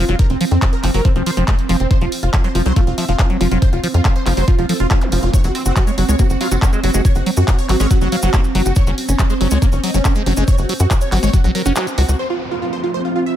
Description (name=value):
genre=psychedelic trance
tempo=140 BPM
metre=4/4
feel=straight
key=unclear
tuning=A4 = 440 Hz
part: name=supersaw stab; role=melody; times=0.0-13.3 s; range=C4 to F5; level=-23 LUFS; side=right 1 dB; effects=phaser, sidechain pumping, digital delay
part: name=evolving wavetable pad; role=sustained chords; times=0.0-13.4 s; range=F3 to C4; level=-24 LUFS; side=right 4 dB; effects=chorus, built-in reverb, sidechain pumping
part: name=liquid acid bass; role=riff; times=0.0-12.0 s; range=E3 to F4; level=-22 LUFS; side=left 1 dB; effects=phaser, auto-pan, sidechain pumping, tape echo
part: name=tight sequencer bass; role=bass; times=0.0-12.2 s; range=F1 to Gb2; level=-16 LUFS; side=equal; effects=none
part: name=sub drop, zap and downlifter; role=sound effects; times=0.0-0.2, 5.0-5.1, 12.2-13.4 s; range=none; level=-29 LUFS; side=equal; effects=none
part: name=big-room dance drum kit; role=drums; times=0.1-12.2 s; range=handclaps, hi-hat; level=-25 LUFS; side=equal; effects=low-pass filter on hats, small room reverb, low-pass filter on snare, low-pass filter on cymbals
part: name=electronic kick drum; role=drums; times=0.2-11.4 s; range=none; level=-14 LUFS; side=equal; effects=small room reverb
part: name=maracas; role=percussion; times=5.3-12.2 s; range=none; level=-29 LUFS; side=equal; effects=none
part: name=metallic wobble bass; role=second line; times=5.5-8.4 s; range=C4 to Gb4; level=-32 LUFS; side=right 2 dB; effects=lush chorus, sidechain pumping, high-pass filter, tape echo
part: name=granular cloud pad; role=texture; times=12.7-13.4 s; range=C4 to F4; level=-22 LUFS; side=right 1 dB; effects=built-in reverb, sidechain pumping
room=little or no reverb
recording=none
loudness=-13 LUFS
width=side -11 dB against mid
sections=0.0-12.2 A section; 12.2-13.4 B section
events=drop 0.0-12.2; impact 0.0; kick drops out 11.8-12.2; band accent 11.8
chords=0.0 F5; 5.3 Gb5; 12.2 F5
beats=| 0.19 0.62 1.05 1.48 | 1.91 2.33 2.76 3.19 | 3.62 4.05 4.48 4.91 | 5.33 5.76 6.19 6.62 | 7.05 7.48 7.91 8.34 | 8.76 9.19 9.62 10.05 | 10.48 10.91 11.34 11.76 | 12.19 12.62 13.05